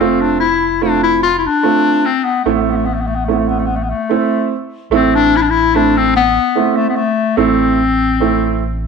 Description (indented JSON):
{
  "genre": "klezmer",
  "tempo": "73 BPM",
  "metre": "3/4",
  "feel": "straight",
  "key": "A minor",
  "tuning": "A4 = 441 Hz",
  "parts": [
    { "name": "warm clarinet", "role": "melody", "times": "0.0-8.9 s", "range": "A3 to F4", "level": "-14 LUFS", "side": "left 6 dB", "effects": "none" },
    { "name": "dark upright piano", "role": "accompaniment", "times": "0.0-8.6 s", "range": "A3 to F4", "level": "-16 LUFS", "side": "right 11 dB", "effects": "none" },
    { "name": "warm sub bass", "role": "bass", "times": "0.0-8.9 s", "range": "F1 to A1", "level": "-22 LUFS", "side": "right 1 dB", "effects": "none" }
  ],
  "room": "wet echo chamber reverb, RT60 1.2 s, small room ambience",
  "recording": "1960s-style stereo with parts hard left and right",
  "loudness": "-12 LUFS",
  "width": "side -5 dB against mid",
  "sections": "0.0-4.9 A section; 4.9-8.9 A section",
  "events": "none",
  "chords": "0.0 F; 2.5 Am",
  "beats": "0.81 1.63 | 2.45 3.27 4.09 | 4.92 5.74 6.56 | 7.38 8.20"
}